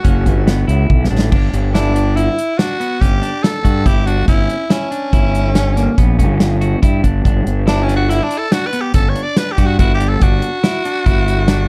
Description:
progressive instrumental, band music in an uneven meter; 142 BPM; 7/4; straight; G lydian; A4 = 439 Hz
breathy tenor saxophone; melody; 0.0-11.7 s; C#4 to D5; -23 LUFS; equal
clean electric guitar; arpeggios; 0.0-11.7 s; A#3 to F#4; -26 LUFS; equal
fuzz fingered electric bass; bass; 0.0-11.7 s; F#1 to G2; -18 LUFS; equal; overdrive
natural country drum kit; drums; 0.0-11.6 s; crash cymbal, hi-hat, kick drum, snare drum, toms; -18 LUFS; equal
light reverb; dark, warm production; -15 LUFS; mono
0.0-1.3 A section; 1.3-11.7 A section
drum fill 0.9-1.3
0.0 Dadd9; 1.3 G5; 4.3 F#7/G (rootless); 7.2 N.C.; 10.2 Dadd9/G

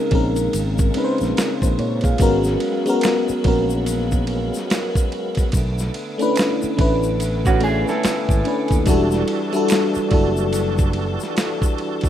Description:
R&B, neo-soul; 72 BPM; 4/4; swing 60% on 16ths; A4 = 440 Hz
FM electric piano with soft pad layer; accompaniment; 0.0-12.1 s; G3 to G#5; -20 LUFS; left 1 dB; chorus
tonewheel organ; sustained chords; 0.0-12.1 s; C#3 to A4; -29 LUFS; right 1 dB; fast rotary speaker, chorus vibrato
fretless electric bass; bass; 0.1-11.2 s; E1 to A#2; -23 LUFS; equal
dusty soul sampler-style drum kit; drums; 0.1-12.1 s; kick drum, ride cymbal, snare drum; -22 LUFS; right 1 dB
tube shaker and finger snaps; percussion; 0.4-12.1 s; -31 LUFS; equal
electric guitar through a small old amp; second line; 7.5-8.8 s; C#4 to A4; -24 LUFS; right 3 dB; spring reverb
light reverb; rough home demo mix; -17 LUFS; side -10 dB against mid
0.0-12.1 A section
0.0 A#m11; 2.2 G#m11; 5.5 Bm11; 8.9 Em11

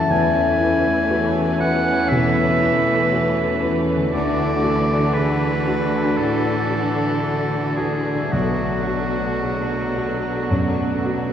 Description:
cinematic, emotional film score for orchestra; 54-61 BPM; 4/4; rubato; A4 = 441 Hz
bright oboe; second line; 0.0-11.3 s; F#4 to A5; -24 LUFS; right 2 dB
rich studio violin section; second line; 0.0-11.3 s; C#4 to B4; -25 LUFS; left 2 dB
bright studio viola section; accompaniment; 0.0-11.3 s; E3 to A3; -26 LUFS; equal
clear grand piano; accompaniment; 0.0-11.3 s; B1 to A4; -24 LUFS; left 1 dB
concert harp; arpeggios; 0.0-11.3 s; B2 to F#4; -27 LUFS; left 4 dB
rich studio cello section; bass; 0.0-11.3 s; E2 to D3; -26 LUFS; right 2 dB
wet cathedral reverb, RT60 4.1 s; nothing above 10.7 kHz; -17 LUFS; side -9 dB against mid
0.0-11.3 A section
0.1 Aadd9/E; 4.1 Dadd9; 8.3 Bm7

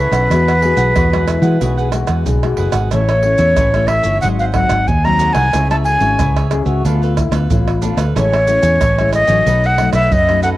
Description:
samba and choro; 92 BPM; 4/4; straight; A major; A4 = 440 Hz
breathy concert flute; melody; 0.0-10.5 s; B4 to Bb5; -15 LUFS; equal; cassette tape
cavaquinho; accompaniment; 0.0-10.6 s; D4 to G#5; -27 LUFS; right 7 dB; cassette tape
nylon-string guitar; accompaniment; 0.0-10.6 s; F#2 to A4; -22 LUFS; left 6 dB; cassette tape
fingered electric bass; bass; 0.0-10.5 s; F#1 to E3; -16 LUFS; equal
maracas, pandeiro, tamborim and surdo; percussion; 0.1-10.6 s; -21 LUFS; right 3 dB
breathy trombone; second line; 0.6-8.0 s; E4 to G#4; -24 LUFS; left 6 dB; cassette tape
light reverb, small room ambience; home recording on cassette; -12 LUFS; side -16 dB against mid
0.0-10.6 A section
0.3 Eadd9; 2.9 A; 4.2 G#7; 5.5 C#m; 6.8 Dm6; 8.2 Amaj7; 9.5 B7

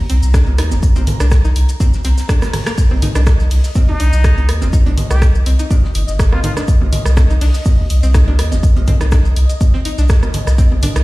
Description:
minimal techno; 123 BPM; 4/4; swing 54% on 16ths; C minor; A4 = 440 Hz
round analog bass; bass; 0.0-11.0 s; G1 to Eb2; -13 LUFS; equal; sidechain pumping
pulsing gated texture; texture; 0.0-11.0 s; Eb5 to Bb5; -31 LUFS; left 2 dB; chorus, built-in reverb, sidechain pumping
string-like resonator pluck; riff; 0.1-11.0 s; Bb3 to Eb4; -27 LUFS; left 1 dB; chorus, cassette tape, sidechain pumping, dub echo
cloth-damped thuddy drum kit; drums; 0.1-10.9 s; hi-hat, shaker, snare drum; -36 LUFS; left 1 dB; high-pass filter on hats, high-pass filter on snare, high-pass filter on perc, high-pass filter on room
house drum kit; drums; 0.1-11.0 s; cabasa, hi-hat, rim click; -26 LUFS; equal
electronic kick drum; drums; 0.3-10.7 s; -12 LUFS; equal
electronic bongos, rim click and congas; percussion; 0.5-11.0 s; -23 LUFS; right 2 dB; ping-pong delay
trumpet with plunger mute; melody; 3.9-6.5 s; Eb4 to G4; -27 LUFS; left 1 dB; ping-pong delay
small room ambience; played on a big sound system in a bare room, stone room reverb; -11 LUFS; side -20 dB against mid
0.0-11.0 A section
drum fill 2.5
0.0 Cm7

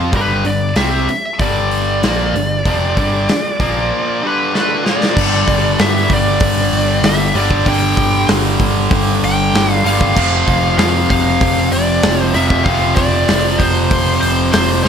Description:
hard rock; 96 BPM; 4/4; straight; A4 = 441 Hz
high-gain distorted guitar; riff; 0.0-14.9 s; F2 to F4; -16 LUFS; equal; distortion
overdriven picked electric bass; bass; 0.0-14.9 s; F1 to G2; -19 LUFS; equal
big rock drum kit; drums; 0.1-14.9 s; crash cymbal, hi-hat, kick drum, snare drum; -18 LUFS; equal
high-gain lead guitar; melody; 0.2-14.9 s; B4 to G5; -18 LUFS; equal; distortion, analog delay
light reverb, small room reverb; -12 LUFS; side -8 dB against mid
0.0-5.2 A section; 5.2-14.9 B section
drum fill 4.5-5.2
0.0 G5; 3.6 Bb5; 4.2 G5; 10.2 F5

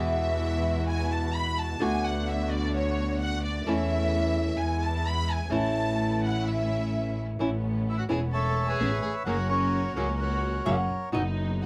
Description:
tango; 129 BPM; 4/4; rubato; A major; A4 = 440 Hz
warm studio violin section; second line; 0.0-11.7 s; C#4 to B5; -35 LUFS; equal
flamenco guitar; accompaniment; 0.0-11.2 s; B2 to F#4; -32 LUFS; equal
muted studio string section; stabs; 0.0-11.7 s; F#3 to F#4; -40 LUFS; equal
warm double bass; bass; 0.0-11.7 s; E1 to E2; -32 LUFS; equal
bandoneon; melody; 7.9-11.7 s; F#4 to A5; -32 LUFS; equal
hollow-body jazz guitar; second line; 10.7-11.5 s; D#5 to F#5; -36 LUFS; equal
light reverb; -28 LUFS; mono
0.0-7.4 A section; 7.4-11.7 B section
violin section solo 0.0-7.4
0.0 Eadd9; 1.8 D6; 3.7 A/E; 4.6 E; 5.5 A; 7.4 Aadd9; 9.3 F#; 11.1 B/F#

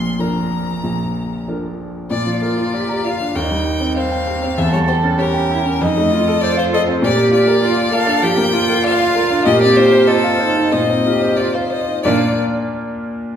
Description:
quick classical-period movement for piano trio; 88-101 BPM; 4/4; rubato; Bb major; A4 = 440 Hz
clear violin; melody; 0.0-12.4 s; A4 to C6; -20 LUFS; left 5 dB
rich cello; second line; 0.0-12.4 s; F3 to A4; -19 LUFS; right 3 dB
warm baby grand piano; accompaniment; 0.0-13.4 s; Bb1 to Bb5; -18 LUFS; equal
wet recital hall reverb, RT60 1.6 s; heard from further back in the room; -14 LUFS; side -8 dB against mid
0.0-2.1 A section; 2.1-12.0 B section; 12.0-13.4 C section
0.0 Bb; 3.4 Cm/Eb; 4.6 Edim7; 5.8 F7; 7.0 Bb; 9.5 F7/Bb; 12.0 Bb

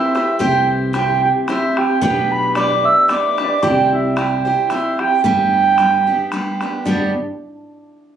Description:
celtic folk, Celtic waltz; 112 BPM; 3/4; swing 54% on 8ths; G major; A4 = 440 Hz
mellow wooden flute; melody; 0.0-7.1 s; D5 to E6; -16 LUFS; right 4 dB
concert harp; second line; 0.0-7.3 s; D4 to E5; -23 LUFS; right 3 dB
picked steel-string acoustic guitar; accompaniment; 0.0-7.1 s; G3 to C5; -20 LUFS; equal
bodhran; percussion; 0.2-7.1 s; -26 LUFS; left 2 dB
upright bass; bass; 0.4-7.1 s; G1 to C2; -26 LUFS; left 1 dB
wet studio reverb, RT60 0.5 s; recorded on a phone in the room, club reverb; -14 LUFS; side -9 dB against mid
0.0-6.9 A section; 6.9-8.2 B section
0.0 C; 2.0 G/B; 3.6 C; 5.2 G

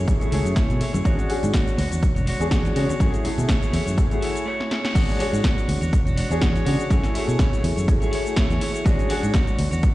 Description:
filtered disco house; 123 BPM; 4/4; swing 55% on 16ths; A4 = 440 Hz
warm concert grand piano; accompaniment; 0.0-9.3 s; A3 to C#5; -28 LUFS; left 1 dB; phaser, sidechain pumping, low-pass filter
clean electric guitar; riff; 0.0-9.9 s; G#3 to C#5; -29 LUFS; right 1 dB; sidechain pumping, low-pass filter
fingered electric bass; bass; 0.0-9.9 s; E1 to C#3; -24 LUFS; equal; sidechain pumping, low-pass filter
electronic kick drum; drums; 0.1-9.9 s; -22 LUFS; equal
house drum kit; drums; 0.1-9.9 s; crash cymbal, hi-hat, shaker, snare drum; -30 LUFS; equal; sidechain pumping on hats, sidechain pumping on perc, sidechain pumping on cymbals
tambourine and congas; percussion; 0.1-4.4 s; -34 LUFS; left 3 dB; sidechain pumping on perc, low-pass filter on perc
digital ambience; played on a big sound system in a bare room, stone room reverb, nothing above 10.3 kHz; -19 LUFS; side -17 dB against mid
0.0-5.0 A section; 5.0-9.9 B section
filter sweep 0.0-5.0; break 4.5-5.0; drum fill 4.6-5.0; band accent 4.8; drop 5.0-9.9
0.0 F#m9; 1.1 E13; 3.0 F#m9; 5.0 E13; 6.9 F#m9; 8.9 E13

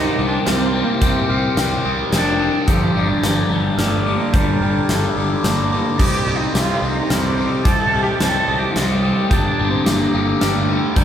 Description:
post-rock; 108 BPM; 3/4; straight; A4 = 440 Hz
warm cello; melody; 0.0-11.0 s; F3 to A4; -21 LUFS; right 2 dB
pedal harmonium; sustained chords; 0.0-11.0 s; D3 to Bb5; -29 LUFS; right 3 dB
glockenspiel with rubber mallets; arpeggios; 0.0-11.0 s; D6 to G6; -30 LUFS; right 4 dB
crunchy overdriven guitar; riff; 0.0-11.0 s; G2 to C4; -21 LUFS; left 4 dB; phaser
fuzz fingered electric bass; bass; 0.0-11.0 s; F1 to C2; -23 LUFS; left 1 dB; overdrive
huge arena drum kit; drums; 0.5-11.0 s; crash cymbal, hi-hat, kick drum, snare drum; -21 LUFS; equal
moderate scoring stage reverb, RT60 2.0 s; recorded in a church or concert hall; -15 LUFS; side -9 dB against mid
0.0-11.0 A section
0.0 Cmadd9; 2.7 Gm; 6.0 Cmadd9; 9.3 Gm

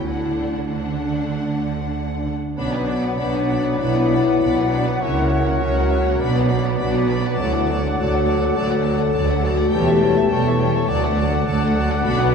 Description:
quick classical-period movement for symphony orchestra; 94-105 BPM; 4/4; rubato; B minor; A4 = 440 Hz
rich chamber violin section; melody; 0.0-12.3 s; E5 to B5; -30 LUFS; left 5 dB
rich chamber violin section; second line; 0.0-12.3 s; D4 to D5; -31 LUFS; left 3 dB
warm clarinet; second line; 0.0-12.3 s; D4 to B4; -30 LUFS; left 3 dB
rich chamber viola section; accompaniment; 0.0-12.3 s; F#3 to D4; -28 LUFS; right 1 dB
clear chamber double bass section; bass; 0.0-12.3 s; E1 to D2; -24 LUFS; right 3 dB
dark chamber cello section; bass; 0.0-12.3 s; D2 to D3; -24 LUFS; right 3 dB
mellow French horn section; sustained chords; 1.9-12.3 s; B3 to A4; -22 LUFS; left 4 dB
clear oboe; second line; 2.6-12.3 s; C#5 to D5; -30 LUFS; equal
silver concert flute; second line; 2.6-12.3 s; F#5 to A5; -29 LUFS; left 2 dB
dark bassoon; accompaniment; 2.6-12.3 s; D3 to F#3; -28 LUFS; left 1 dB
wet concert hall reverb, RT60 2.2 s; heard from further back in the room; -17 LUFS; side -6 dB against mid
0.0-2.6 A section; 2.6-12.3 B section
0.1 D; 2.6 Bm; 5.0 F#7/C#; 6.2 Bm; 7.4 D; 9.7 A7/E; 10.9 D

